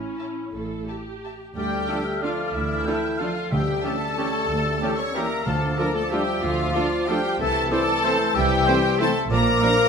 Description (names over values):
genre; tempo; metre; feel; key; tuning
classical, orchestral ballroom waltz; 164-200 BPM; 3/4; rubato; D minor; A4 = 440 Hz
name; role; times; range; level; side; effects
warm clarinet; second line; 0.0-9.9 s; E4 to C#5; -30 LUFS; left 2 dB; none
rich symphonic viola section; accompaniment; 0.0-9.7 s; F3 to A4; -33 LUFS; right 1 dB; none
rich symphonic violin section; melody; 0.2-9.9 s; E4 to A5; -30 LUFS; left 3 dB; none
warm symphonic violin section; second line; 0.2-9.9 s; E5 to C#6; -28 LUFS; left 1 dB; none
rich symphonic cello section; bass; 0.5-9.6 s; D2 to C3; -31 LUFS; right 3 dB; none
rich symphonic double bass section; bass; 0.5-9.6 s; A1 to D2; -32 LUFS; right 3 dB; none
mellow hollow large flute ensemble; second line; 1.6-9.9 s; D6 to F6; -32 LUFS; left 3 dB; none
warm oboe; second line; 1.6-9.9 s; A4 to G5; -33 LUFS; right 1 dB; none
mellow bassoon; accompaniment; 1.6-9.9 s; E3 to A3; -31 LUFS; right 1 dB; none
mellow French horn section; sustained chords; 1.6-9.9 s; E3 to C#4; -29 LUFS; left 5 dB; none
dark trombone section; sustained chords; 1.9-9.7 s; E3 to D4; -32 LUFS; right 3 dB; none
clear trumpet; stabs; 1.9-9.7 s; G4 to C5; -33 LUFS; right 2 dB; none
timpani; percussion; 3.5-5.9 s; D3; -31 LUFS; left 1 dB; none
room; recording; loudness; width
wet recital hall reverb, RT60 1.5 s; none; -20 LUFS; side -6 dB against mid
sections
0.0-1.6 A section; 1.6-9.9 B section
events
none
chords
0.0 A; 1.6 Dm; 3.5 A7/D; 5.5 Dm; 7.4 Am/C; 9.3 Bb